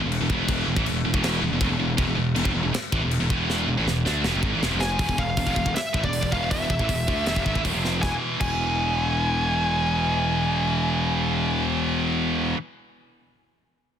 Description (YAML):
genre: heavy metal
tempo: 159 BPM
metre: 4/4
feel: straight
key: E phrygian dominant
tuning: A4 = 439 Hz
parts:
  - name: scooped high-gain guitar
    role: riff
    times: 0.0-12.6 s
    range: E2 to D4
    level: -25 LUFS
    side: equal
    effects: distortion
  - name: fuzz picked electric bass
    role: bass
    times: 0.0-12.5 s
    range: E1 to D2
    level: -27 LUFS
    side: equal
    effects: overdrive
  - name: tight metal drum kit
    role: drums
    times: 0.1-8.5 s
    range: china cymbal, crash cymbal, hi-hat, kick drum, snare drum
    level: -28 LUFS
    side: equal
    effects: soft clipping on kick
  - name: high-gain lead guitar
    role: melody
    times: 4.8-11.8 s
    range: D5 to G#5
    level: -27 LUFS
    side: equal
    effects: distortion, digital delay
room: little or no reverb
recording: dense, heavily limited modern master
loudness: -21 LUFS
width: side -9 dB against mid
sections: 0.0-5.0 A section; 5.0-8.0 B section; 8.0-11.1 C section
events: drum fill 3.5-5.0, 7.8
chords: 0.0 E5; 8.0 E